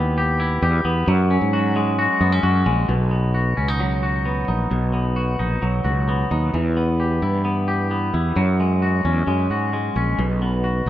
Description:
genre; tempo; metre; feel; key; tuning
jangly indie pop; 132 BPM; 4/4; straight; B major; A4 = 440 Hz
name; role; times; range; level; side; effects
twangy electric guitar; arpeggios; 0.0-10.9 s; B2 to G4; -22 LUFS; left 1 dB; tape echo
fretless electric bass; bass; 0.0-10.9 s; A#1 to G#2; -20 LUFS; equal; none
room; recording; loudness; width
light reverb, digital ambience; rough home demo mix; -18 LUFS; side -13 dB against mid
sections
0.0-2.9 A section; 2.9-10.9 B section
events
none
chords
0.0 Em; 1.1 F#sus2; 2.9 B; 6.5 Em; 8.4 F#sus2; 10.2 B5

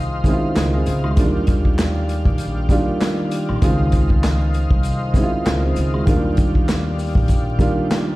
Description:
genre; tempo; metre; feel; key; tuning
hip hop, boom-bap hip-hop; 98 BPM; 4/4; swing 56% on 16ths; unclear; A4 = 440 Hz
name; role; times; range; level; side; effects
dark upright piano; accompaniment; 0.0-8.2 s; Eb3 to Bb4; -22 LUFS; right 1 dB; cassette tape, high-pass filter, low-pass filter
tonewheel organ; sustained chords; 0.0-8.2 s; Eb3 to F5; -28 LUFS; left 2 dB; chorus vibrato, slow rotary speaker, high-pass filter, low-pass filter
upright bass; bass; 0.0-7.7 s; Bb1 to Eb2; -21 LUFS; equal; none
vintage drum kit; drums; 0.2-8.1 s; handclaps, hi-hat, kick drum, snare drum; -19 LUFS; equal; none
maracas and woodblock; percussion; 0.2-8.1 s; none; -42 LUFS; left 1 dB; none
room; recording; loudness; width
little or no reverb; played on a big sound system in a bare room, stone room reverb, vinyl crackle; -16 LUFS; side -18 dB against mid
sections
0.0-8.2 A section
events
none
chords
0.0 Dbmaj9; 1.2 Ebmaj9; 3.6 Dbmaj9; 6.1 Ebmaj9

